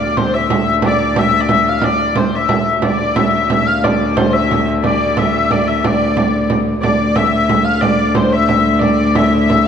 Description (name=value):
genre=medieval dance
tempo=120 BPM (dotted quarters)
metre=6/8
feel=straight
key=D minor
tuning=A4 = 440 Hz
part: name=warm hurdy-gurdy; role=melody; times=0.0-9.7 s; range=C5 to F5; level=-16 LUFS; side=left 3 dB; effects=none
part: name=clear viola da gamba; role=drone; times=0.0-9.7 s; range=D2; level=-17 LUFS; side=left 1 dB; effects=none
part: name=frame drum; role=percussion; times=0.2-9.6 s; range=none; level=-18 LUFS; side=right 4 dB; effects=none
room=wet concert hall reverb, RT60 1.9 s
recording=dark, warm production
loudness=-12 LUFS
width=side -8 dB against mid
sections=0.0-6.8 A section; 6.8-9.7 A section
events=none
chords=none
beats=0.33 | 0.83 1.33 | 1.83 2.33 | 2.83 3.33 | 3.83 4.33 | 4.83 5.32 | 5.82 6.32 | 6.82 7.32 | 7.82 8.32 | 8.82 9.31